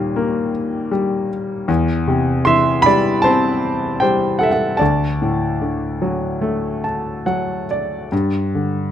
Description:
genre	classical, lyrical solo piano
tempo	69-79 BPM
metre	4/4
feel	rubato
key	unclear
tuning	A4 = 438 Hz
part	clear grand piano	solo	0.0-8.9 s	D2 to C6	-16 LUFS	equal	none
room	light reverb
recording	close, detailed microphones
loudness	-16 LUFS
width	side -10 dB against mid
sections	0.0-8.9 A section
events	grand piano fill 6.4-8.1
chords	0.0 Ebadd9; 1.7 C/E; 4.8 D; 8.1 G5

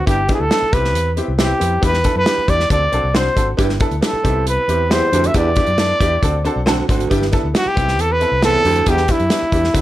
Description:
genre	uptempo 1960s-style soul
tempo	136 BPM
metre	4/4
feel	straight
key	unclear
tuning	A4 = 439 Hz
part	breathy trumpet	melody	0.0-9.8 s	E4 to E5	-17 LUFS	equal	none
part	clear baby grand piano	accompaniment	0.1-9.8 s	A3 to C5	-22 LUFS	left 1 dB	none
part	vintage muted fingered electric bass	bass	0.1-9.8 s	G1 to F#2	-21 LUFS	equal	none
part	natural country drum kit	drums	0.1-9.8 s	hi-hat, kick drum, snare drum	-19 LUFS	equal	none
part	clear baritone saxophone	riff	3.6-9.0 s	D2 to G2	-21 LUFS	right 4 dB	none
room	light reverb, small room ambience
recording	none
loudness	-14 LUFS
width	side -14 dB against mid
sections	0.0-9.8 A section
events	none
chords	0.1 G6; 0.7 Cmaj7; 1.8 Em7; 2.7 D7; 3.6 G6; 4.2 Cmaj7; 5.3 Em7; 6.2 D7; 7.1 G6; 7.8 Cmaj7; 8.9 Em7

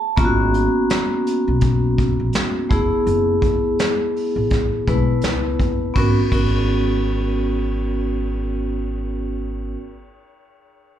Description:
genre	hip hop, jazz-hop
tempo	83 BPM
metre	4/4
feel	swing 59% on 16ths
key	unclear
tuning	A4 = 440 Hz
part	vibraphone with medium mallets	accompaniment	0.0-9.8 s	G#3 to A5	-20 LUFS	equal	slapback echo
part	upright bass	bass	0.2-9.7 s	F#1 to C#2	-22 LUFS	equal	none
part	vintage brush drum kit	drums	0.2-6.5 s	hi-hat, kick drum, ride cymbal, snare drum	-23 LUFS	equal	none
room	light reverb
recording	live gig heard through the venue's PA, club reverb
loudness	-17 LUFS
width	side -10 dB against mid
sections	0.2-6.0 A section; 6.0-8.8 B section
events	break 0.0; vibraphone fill 0.0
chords	0.2 G#m11; 2.7 F#m11; 6.0 G#m11

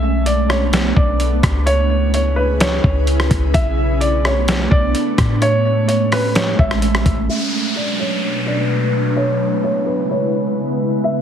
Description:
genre	hip hop, atmospheric cloud-rap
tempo	128 BPM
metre	4/4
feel	half-time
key	B dorian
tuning	A4 = 440 Hz
part	felt-muted upright piano	melody	0.0-11.2 s	B4 to E5	-21 LUFS	right 1 dB	low-pass filter, digital delay
part	ethereal airy pad	sustained chords	0.0-11.2 s	B2 to B4	-20 LUFS	right 1 dB	ensemble chorus, built-in reverb, sidechain pumping, low-pass filter
part	clean 808-style bass	bass	0.0-7.3 s	A1 to A2	-18 LUFS	equal	none
part	trip hop sampler-style drum kit	drums	0.3-7.2 s	hi-hat, kick drum, rim click, snare drum	-18 LUFS	equal	none
part	downlifter	sound effects	7.3-11.0 s	none	-25 LUFS	equal	none
room	light reverb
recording	heavily compressed radio sound, multiband compression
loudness	-14 LUFS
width	side -8 dB against mid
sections	0.0-7.3 A section; 7.3-11.2 B section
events	none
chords	0.0 Bm7; 1.7 C#m7; 3.5 Bm7; 5.4 Amaj7; 7.3 Bm7; 9.2 C#m7

